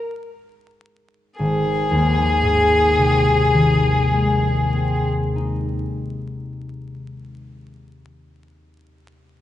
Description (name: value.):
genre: classical, impressionist duo for violin and harp.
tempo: 42 BPM.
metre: 4/4.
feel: rubato.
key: Ab major.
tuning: A4 = 441 Hz.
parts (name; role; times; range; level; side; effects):
rich violin; melody; 1.4-5.1 s; Ab4; -20 LUFS; left 3 dB; none.
concert harp; accompaniment; 1.4-8.5 s; Ab1 to Eb4; -19 LUFS; left 1 dB; none.
room: wet recital hall reverb, RT60 1.7 s.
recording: heard from further back in the room, vinyl crackle, nothing above 10.9 kHz.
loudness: -16 LUFS.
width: side -12 dB against mid.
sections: 0.0-1.4 A section; 1.4-7.0 B section.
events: slowing down 0.0-1.4.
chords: 0.0 N.C.; 1.4 Ab.